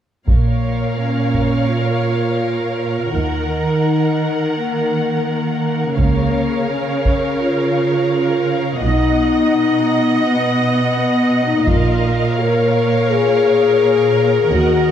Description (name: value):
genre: cinematic, epic orchestral film score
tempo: 84 BPM (dotted quarters)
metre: 12/8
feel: straight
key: Bb phrygian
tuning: A4 = 440 Hz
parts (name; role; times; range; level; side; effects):
- dark symphonic violin section; melody; 0.3-14.9 s; F5 to Gb5; -27 LUFS; left 3 dB; none
- dark symphonic violin section; second line; 0.3-14.9 s; Bb4 to D#5; -24 LUFS; equal; none
- clear symphonic viola section; accompaniment; 0.3-14.9 s; Bb4 to D#5; -24 LUFS; right 2 dB; none
- mellow French horn section; sustained chords; 0.3-14.9 s; Bb3 to Bb4; -18 LUFS; left 4 dB; none
- rich symphonic cello section; bass; 0.3-14.9 s; Bb2 to Eb3; -20 LUFS; right 3 dB; none
- rich symphonic double bass section; bass; 0.3-14.9 s; Bb1 to Eb2; -20 LUFS; right 3 dB; none
- taiko ensemble; drums; 0.3-1.6, 6.0-7.3, 11.7-12.6 s; none; -18 LUFS; equal; none
room: wet scoring stage reverb, RT60 1.6 s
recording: dark, warm production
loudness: -14 LUFS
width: side -9 dB against mid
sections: 0.3-14.9 A section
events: none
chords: 0.3 Bbm; 3.1 Ebm; 6.0 Bbm/Db; 8.8 B; 11.7 Bbm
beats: | 0.28 0.99 1.71 2.42 | 3.14 3.85 4.56 5.28 | 5.99 6.70 7.42 8.13 | 8.84 9.55 10.26 10.97 | 11.68 12.39 13.10 13.81 | 14.52